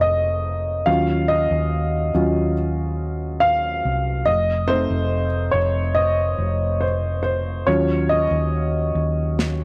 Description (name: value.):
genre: pop ballad.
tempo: 70 BPM.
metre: 4/4.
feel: straight.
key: unclear.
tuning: A4 = 440 Hz.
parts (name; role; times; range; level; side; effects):
warm upright piano; accompaniment; 0.0-9.6 s; Gb3 to F5; -23 LUFS; equal; none.
hollow-body short-scale fingered electric bass; bass; 0.0-9.6 s; F1 to Eb2; -25 LUFS; equal; none.
snare drum; drums; 9.4-9.6 s; none; -25 LUFS; equal; none.
room: light reverb, small room ambience.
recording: dry, gritty hardware recording.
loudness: -21 LUFS.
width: mono.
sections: 0.0-9.6 A section.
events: upright piano solo 0.0-9.6; drum fill 9.4.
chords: 0.0 F7; 0.9 Ebm7; 4.3 F7; 7.7 Ebm7.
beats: 0.03 | 0.88 1.72 2.57 3.42 | 4.27 5.12 5.96 6.82 | 7.67 8.53 9.38.